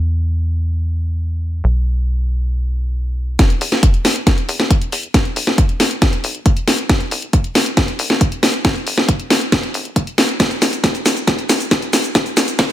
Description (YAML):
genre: uplifting trance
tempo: 137 BPM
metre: 4/4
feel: straight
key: E minor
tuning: A4 = 440 Hz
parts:
  - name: tight sequencer bass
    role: bass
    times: 0.0-12.5 s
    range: G1 to E2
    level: -18 LUFS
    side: equal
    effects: sidechain pumping, high-pass filter
  - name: electronic kick drum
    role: drums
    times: 3.4-12.7 s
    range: none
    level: -15 LUFS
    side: equal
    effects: none
  - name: house drum kit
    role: drums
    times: 3.4-12.7 s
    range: hi-hat, shaker, snare drum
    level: -16 LUFS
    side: equal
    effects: sidechain pumping on hats, sidechain pumping on perc
room: light reverb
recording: high-pass filter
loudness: -14 LUFS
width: side -12 dB against mid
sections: 0.0-3.4 A section; 3.4-12.7 B section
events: build-up 3.4-12.7; drum fill 3.4-12.7; filter sweep 3.4-12.7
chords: none